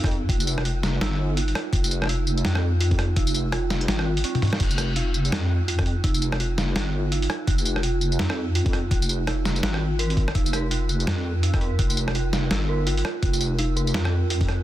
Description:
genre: half-time drum and bass.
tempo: 167 BPM.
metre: 4/4.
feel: swing 60% on 16ths, half-time.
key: F minor.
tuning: A4 = 441 Hz.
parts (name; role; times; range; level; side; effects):
dark detuned synth bell; arpeggios; 0.0-14.6 s; C4 to Bb4; -30 LUFS; right 3 dB; chorus, phaser, dub echo.
deep soft wobble bass; bass; 0.0-14.6 s; F1 to F2; -24 LUFS; equal; chorus.
boom bap sampler-style drum kit; drums; 0.0-14.6 s; crash cymbal, hi-hat, rim click, snare drum, tambourine, toms; -27 LUFS; equal; soft clipping on snare.
electronic kick drum; drums; 0.0-14.5 s; none; -23 LUFS; equal; none.
room: digital ambience.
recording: dense, heavily limited modern master.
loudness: -21 LUFS.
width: side -13 dB against mid.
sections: 0.0-14.6 A section.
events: drum fill 4.3.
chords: 0.0 F5.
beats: | 0.29 0.65 1.01 1.37 | 1.73 2.09 2.45 2.81 | 3.17 3.52 3.88 4.24 | 4.60 4.96 5.32 5.68 | 6.04 6.40 6.76 7.12 | 7.48 7.84 8.20 8.55 | 8.91 9.27 9.63 9.99 | 10.35 10.71 11.07 11.43 | 11.79 12.15 12.51 12.87 | 13.22 13.58 13.94 14.30.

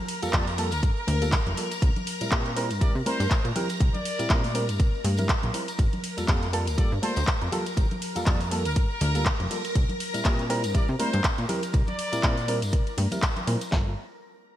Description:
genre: filtered disco house.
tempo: 121 BPM.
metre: 4/4.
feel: swing 56% on 16ths.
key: G dorian.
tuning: A4 = 444 Hz.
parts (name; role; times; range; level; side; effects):
phased string machine; sustained chords; 0.0-13.7 s; Bb4 to Bb5; -35 LUFS; equal; ensemble chorus, phaser, sidechain pumping.
house drum kit; drums; 0.1-13.7 s; handclaps, hi-hat, ride cymbal; -31 LUFS; equal; sidechain pumping on hats, sidechain pumping on cymbals, gated reverb.
barky reed electric piano; accompaniment; 0.2-13.9 s; G3 to Bb4; -32 LUFS; right 1 dB; phaser, vintage 12-bit sampler grit, sidechain pumping.
plucky analog bass; bass; 0.2-14.0 s; F1 to C3; -28 LUFS; equal; sidechain pumping.
tambourine and congas; percussion; 0.2-13.7 s; none; -36 LUFS; left 1 dB; sidechain pumping on perc.
house drum kit; drums; 0.3-13.9 s; handclaps, kick drum, snare drum; -24 LUFS; equal; none.
brilliant trumpet section; melody; 0.7-12.6 s; Bb4 to D5; -35 LUFS; left 2 dB; sidechain pumping, digital delay.
room: light reverb.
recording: bright 1980s-style digital production.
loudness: -23 LUFS.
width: side -12 dB against mid.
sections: 0.0-13.7 A section.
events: drop 0.0-13.7.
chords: 0.0 Gm9; 1.8 C7; 5.8 Gm9; 9.8 C7; 13.7 Gm9.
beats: 0.33 0.83 1.33 | 1.82 2.32 2.81 3.31 | 3.81 4.30 4.80 5.29 | 5.79 6.29 6.78 7.28 | 7.77 8.27 8.76 9.26 | 9.76 10.25 10.75 11.24 | 11.74 12.23 12.73 13.23 | 13.72.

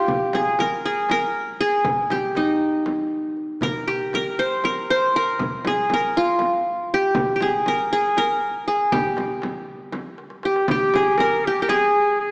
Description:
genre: Turkish makam ensemble.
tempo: 238 BPM (eighths).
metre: 7/8.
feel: straight.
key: unclear.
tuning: A4 = 440 Hz.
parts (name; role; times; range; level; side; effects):
qanun; melody; 0.0-12.3 s; Eb4 to C5; -22 LUFS; equal; none.
darbuka; percussion; 0.1-12.0 s; none; -42 LUFS; equal; none.
frame drum; percussion; 0.1-11.8 s; none; -32 LUFS; equal; none.
bright clarinet; second line; 10.4-12.3 s; G4 to Bb4; -24 LUFS; equal; none.
room: wet concert hall reverb, RT60 2.2 s.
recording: small speaker sound.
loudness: -21 LUFS.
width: mono.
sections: 0.0-10.7 A section; 10.7-12.3 B section.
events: drum fill 10.2-10.7.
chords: none.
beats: | 0.10 0.35 0.60 0.85 1.11 1.36 1.61 | 1.86 2.12 2.37 2.62 2.87 3.13 3.38 | 3.63 3.88 4.14 4.39 4.64 4.89 5.14 | 5.40 5.65 5.90 6.15 6.41 6.66 6.91 | 7.16 7.41 7.67 7.92 8.17 8.42 8.67 | 8.92 9.18 9.43 9.68 9.93 10.18 10.43 | 10.68 10.93 11.18 11.44 11.69 11.94 12.19.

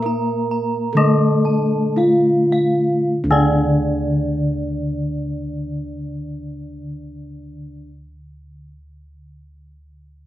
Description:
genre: Javanese gamelan.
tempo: 49-70 BPM.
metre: 4/4.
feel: straight.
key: unclear.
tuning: A4 = 439 Hz.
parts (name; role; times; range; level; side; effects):
gamelan-type bronze metallophone; melody; 0.0-7.9 s; D4 to Bb4; -21 LUFS; equal; slapback echo.
gamelan-type bronze metallophone; accompaniment; 0.0-7.9 s; D3 to Bb3; -22 LUFS; left 2 dB; none.
gamelan-type bronze metallophone; arpeggios; 0.0-7.9 s; D5 to Bb5; -28 LUFS; right 4 dB; slapback echo.
gamelan-type bossed gongs; bass; 0.0-7.8 s; D2 to Bb4; -24 LUFS; equal; none.
room: little or no reverb.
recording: recorded outdoors, with no room sound.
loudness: -16 LUFS.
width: side -14 dB against mid.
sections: 0.0-3.1 A section; 3.1-8.0 B section.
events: slowing down 0.0-3.1.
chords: none.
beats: 0.06 0.96 1.98 | 3.12 4.35 5.57 6.80.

